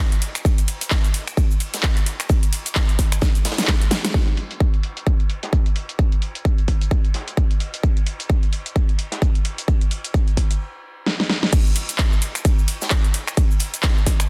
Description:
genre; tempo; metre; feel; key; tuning
house; 130 BPM; 4/4; swing 58% on 16ths; none; none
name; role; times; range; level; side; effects
big-room dance drum kit; drums; 0.1-14.3 s; cabasa, crash cymbal, finger snaps, handclaps, hi-hat, snare drum; -27 LUFS; equal; low-pass filter on hats, low-pass filter on snare, low-pass filter on perc, low-pass filter on cymbals, low-pass filter on room
big rock drum kit; drums; 0.2-14.2 s; ride cymbal, snare drum; -37 LUFS; equal; sidechain pumping on cymbals, high-pass filter on cymbals, low-pass filter on cymbals, high-pass filter on snare, low-pass filter on snare, high-pass filter on room, low-pass filter on room
electronic kick drum; drums; 0.5-14.2 s; none; -20 LUFS; equal; none
room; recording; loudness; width
little or no reverb; dense, heavily limited modern master; -20 LUFS; mono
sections
0.0-4.1 A section; 4.1-11.5 B section; 11.5-14.3 C section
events
drum fill 3.2-4.1, 11.1-11.5; band accent 4.0; stop 10.6-11.5; drop 11.5-14.3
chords
none

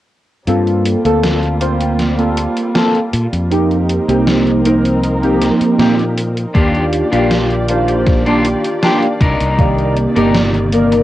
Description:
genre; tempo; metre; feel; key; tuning
vaporwave; 79 BPM; 4/4; straight; unclear; A4 = 440 Hz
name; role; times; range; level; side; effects
warbly lo-fi synth keys; accompaniment; 0.5-11.0 s; Eb3 to D5; -14 LUFS; equal; phaser, wide subtle chorus, cassette tape, analog delay
muted studio string section; sustained chords; 0.5-11.0 s; C3 to D5; -22 LUFS; equal; vintage 12-bit sampler grit, cassette tape
mellow fretless electric bass; bass; 0.5-11.0 s; G1 to Bb2; -18 LUFS; equal; none
gated 80s digital drum machine; drums; 0.5-11.0 s; hi-hat, snare drum; -20 LUFS; equal; gated reverb, gated reverb snare, cassette tape
electric guitar at the edge of break-up; riff; 6.5-11.0 s; D4 to Bb4; -20 LUFS; left 2 dB; lush chorus, cassette tape, analog delay
electronic kick drum; drums; 6.5-9.7 s; none; -14 LUFS; equal; overdrive, cassette tape
room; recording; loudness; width
moderate booth ambience, RT60 0.2 s; home recording on cassette; -12 LUFS; side -14 dB against mid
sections
0.5-11.0 A section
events
none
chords
0.5 Gm11; 3.5 F7sus4; 6.5 Ebmaj9; 9.2 Cm9

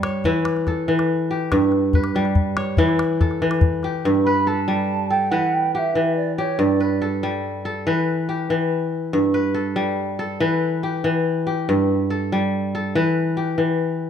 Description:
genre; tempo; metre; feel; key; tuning
west african traditional, West African string and xylophone music; 94 BPM (dotted quarters); 12/8; straight; G lydian; A4 = 438 Hz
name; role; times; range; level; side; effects
kora; arpeggios; 0.0-14.1 s; G2 to C#5; -19 LUFS; equal; none
calabash; percussion; 0.0-3.9 s; none; -21 LUFS; left 2 dB; none
mellow hollow wooden flute; melody; 4.2-7.1 s; C#5 to B5; -22 LUFS; right 4 dB; slapback echo
room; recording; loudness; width
moderate recital hall reverb, RT60 1.5 s; dark, warm production; -18 LUFS; side -8 dB against mid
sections
0.0-4.0 A section; 4.0-14.1 A section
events
none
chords
0.2 Em; 1.5 G; 2.8 Em; 4.0 G; 5.3 Em; 6.6 G; 7.8 Em; 9.1 G; 10.4 Em; 11.7 Gsus2; 12.9 Em

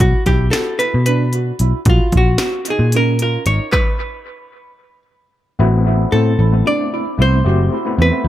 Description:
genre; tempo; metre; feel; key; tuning
progressive instrumental, band music in an uneven meter; 226 BPM (eighths); 7/8; straight; unclear; A4 = 441 Hz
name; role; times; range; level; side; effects
archtop guitar, miked and amplified; melody; 0.0-8.3 s; E#4 to D5; -20 LUFS; equal; analog delay
dark grand piano; arpeggios; 0.0-8.3 s; C4 to F#4; -23 LUFS; right 5 dB; analog delay
picked electric bass; bass; 0.0-8.3 s; F#1 to B2; -14 LUFS; equal; none
techno drum kit; drums; 0.0-3.9 s; handclaps, hi-hat, kick drum, snare drum; -18 LUFS; equal; none
overdriven tine electric piano; accompaniment; 5.6-8.3 s; A3 to G4; -20 LUFS; left 4 dB; fast tremolo, analog delay
room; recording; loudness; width
light reverb; echo-heavy mix; -13 LUFS; side -13 dB against mid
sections
0.0-5.6 A section; 5.6-8.3 B section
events
stop 3.7-5.6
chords
0.0 B5; 1.9 F#maj7/A#; 3.7 N.C.; 5.6 Amadd9

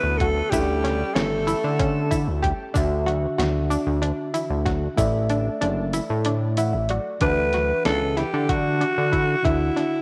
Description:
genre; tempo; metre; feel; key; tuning
progressive instrumental, band music in an uneven meter; 188 BPM (eighths); 7/8; straight; D major; A4 = 439 Hz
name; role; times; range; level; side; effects
growling alto saxophone; melody; 0.0-2.4, 7.2-10.0 s; E4 to B4; -26 LUFS; equal; tape echo
breathy alto saxophone; second line; 0.0-2.4 s; G3 to B3; -36 LUFS; equal; tape echo
mellow tine electric piano; accompaniment; 0.0-10.0 s; D3 to F#5; -32 LUFS; equal; none
analog pluck; arpeggios; 0.0-9.9 s; C#4 to G4; -30 LUFS; equal; chorus
fat analog bass; bass; 0.0-9.7 s; F#1 to D3; -26 LUFS; equal; none
dusty soul sampler-style drum kit; drums; 0.2-9.9 s; hi-hat, kick drum, snare drum; -30 LUFS; equal; none
tube shaker; percussion; 0.5-6.9 s; none; -44 LUFS; equal; none
room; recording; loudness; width
moderate plate reverb, RT60 2.3 s; none; -23 LUFS; mono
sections
0.0-7.2 A section; 7.2-10.0 B section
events
kick and snare drop out 5.3-7.2; tine electric piano fill 6.3-7.2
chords
0.0 Bm7/D; 0.5 A7; 2.8 Dadd9; 5.0 Asus4; 7.2 Dadd9

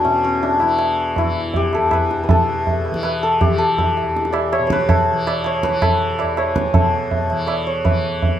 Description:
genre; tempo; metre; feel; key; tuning
indian classical, Hindustani; 162 BPM; 3/4; straight; E raga bhimpalasi; A4 = 441 Hz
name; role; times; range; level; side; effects
santur; melody; 0.0-8.4 s; C#4 to E5; -18 LUFS; left 1 dB; none
tanpura; drone; 0.0-8.4 s; E2 to E3; -26 LUFS; equal; none
tabla; percussion; 0.0-8.4 s; none; -20 LUFS; right 2 dB; none
room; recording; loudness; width
light reverb; close, detailed microphones; -16 LUFS; side -10 dB against mid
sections
0.0-6.7 A section; 6.7-8.4 B section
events
none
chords
none

